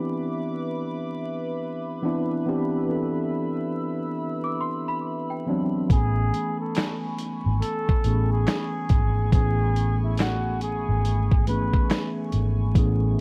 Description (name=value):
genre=lo-fi hip hop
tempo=70 BPM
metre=4/4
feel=swing 63% on 16ths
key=A major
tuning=A4 = 440 Hz
part: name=mellow tine electric piano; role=accompaniment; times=0.0-13.2 s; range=E3 to G#5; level=-30 LUFS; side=equal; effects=low-pass filter
part: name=dark analog pad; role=sustained chords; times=0.0-13.2 s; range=A3 to E6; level=-38 LUFS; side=equal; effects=chorus, phaser, low-pass filter
part: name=small celesta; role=second line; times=4.4-5.9 s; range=G5 to D6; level=-34 LUFS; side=equal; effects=low-pass filter, analog delay
part: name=breathy flugelhorn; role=melody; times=5.9-12.1 s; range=E4 to B4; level=-33 LUFS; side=equal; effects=low-pass filter
part: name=vintage muted fingered electric bass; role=bass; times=5.9-13.2 s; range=G#1 to A1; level=-26 LUFS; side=equal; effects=none
part: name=dusty soul sampler-style drum kit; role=drums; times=5.9-13.0 s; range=handclaps, hi-hat, kick drum, snare drum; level=-25 LUFS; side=equal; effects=none
room=little or no reverb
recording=worn, warbling old tape, cassette tape, vinyl crackle, warbly pitch drift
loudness=-25 LUFS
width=mono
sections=0.0-13.2 A section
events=none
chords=0.0 Cmaj9; 5.9 Amaj9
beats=0.76 1.61 | 2.47 3.33 4.19 5.04 | 5.90 6.76 7.62 8.47 | 9.33 10.19 11.04 11.90 | 12.76